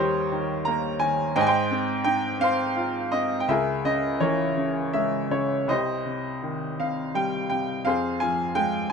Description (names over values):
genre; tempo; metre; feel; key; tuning
classical, lyrical solo piano; 83 BPM; 3/4; uneven beats, rubato; Ab major; A4 = 440 Hz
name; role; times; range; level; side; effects
bright upright piano; solo; 0.0-8.9 s; C2 to Bb5; -22 LUFS; equal; none
room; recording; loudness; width
light reverb; minimal, uncompressed stereo recording; -23 LUFS; side -6 dB against mid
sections
0.0-8.9 A section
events
none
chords
0.0 Eb; 1.4 Ab6; 3.5 Dbm6; 5.7 Cm; 7.9 Fm